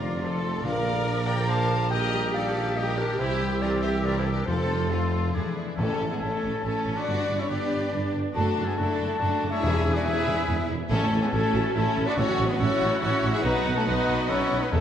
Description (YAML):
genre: cinematic, heroic adventure film score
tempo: 141 BPM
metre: 3/4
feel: straight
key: Bb major, A major from 5.8 s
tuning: A4 = 443 Hz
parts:
  - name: warm studio violin section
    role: melody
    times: 0.0-14.8 s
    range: B3 to G5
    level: -34 LUFS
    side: left 4 dB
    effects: none
  - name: mellow clarinet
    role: second line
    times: 0.0-14.8 s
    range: B3 to Bb5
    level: -34 LUFS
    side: left 1 dB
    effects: none
  - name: mellow hollow silver concert flute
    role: second line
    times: 0.0-14.8 s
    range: G#5 to E6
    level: -36 LUFS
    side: left 2 dB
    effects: none
  - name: rich studio violin section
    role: second line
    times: 0.0-14.8 s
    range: G3 to E5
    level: -38 LUFS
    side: left 1 dB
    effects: none
  - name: warm oboe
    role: second line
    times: 0.0-14.8 s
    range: E4 to Bb5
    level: -38 LUFS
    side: right 1 dB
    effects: none
  - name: warm symphonic viola section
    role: accompaniment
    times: 0.0-14.8 s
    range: C3 to D#5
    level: -36 LUFS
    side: right 1 dB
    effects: none
  - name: mellow French horn section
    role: sustained chords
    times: 0.0-14.8 s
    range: G3 to E5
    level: -33 LUFS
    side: left 4 dB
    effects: none
  - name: mellow trombone section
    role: sustained chords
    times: 0.0-14.8 s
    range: Bb2 to F#4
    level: -38 LUFS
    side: right 3 dB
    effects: none
  - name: concert harp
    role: arpeggios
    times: 0.0-14.8 s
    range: E2 to F#5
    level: -37 LUFS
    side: left 7 dB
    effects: none
  - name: dark trumpet section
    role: stabs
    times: 0.0-14.8 s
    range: C4 to A5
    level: -34 LUFS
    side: equal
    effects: none
  - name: dark symphonic double bass section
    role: bass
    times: 0.0-14.8 s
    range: A1 to G2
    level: -31 LUFS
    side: right 2 dB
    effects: none
  - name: dark tuba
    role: bass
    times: 0.0-14.8 s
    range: E1 to C2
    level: -32 LUFS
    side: right 3 dB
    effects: none
  - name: warm symphonic cello section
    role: bass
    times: 0.0-14.8 s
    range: G#3 to Bb4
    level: -32 LUFS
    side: right 2 dB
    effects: none
  - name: timpani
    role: percussion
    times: 0.6-1.2, 4.5-6.4, 9.6-14.8 s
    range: E2 to Bb2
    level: -33 LUFS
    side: left 1 dB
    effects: none
room: wet scoring stage reverb, RT60 1.6 s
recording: none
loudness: -23 LUFS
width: side -9 dB against mid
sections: 0.0-5.8 A section; 5.8-14.8 B section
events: none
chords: 0.2 F; 0.6 Bb; 1.9 Eb/Bb; 3.2 C; 4.5 F; 5.3 E7; 5.8 A; 7.1 G; 8.4 D/F#; 9.6 E; 10.9 A; 12.2 F#m/A; 13.4 B